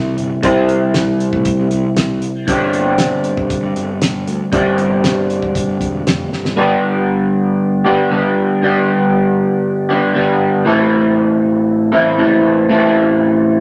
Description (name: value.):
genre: psychedelic rock.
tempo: 117 BPM.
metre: 4/4.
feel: straight.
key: unclear.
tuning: A4 = 438 Hz.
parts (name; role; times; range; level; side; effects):
electric guitar through a small old amp; riff; 0.0-13.6 s; G2 to C5; -15 LUFS; equal; rotary speaker.
fuzz fingered electric bass; bass; 0.0-6.6 s; E1 to G2; -28 LUFS; equal; overdrive.
damped 70s drum kit; drums; 0.2-6.6 s; hi-hat, kick drum, snare drum; -22 LUFS; equal; none.
room: moderate large studio reverb, RT60 1.1 s.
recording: none.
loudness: -15 LUFS.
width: mono.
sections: 0.0-6.6 A section; 6.6-13.6 B section.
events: drum fill 6.3.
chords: 0.0 C; 2.5 Gsus4; 6.6 G; 10.7 Am.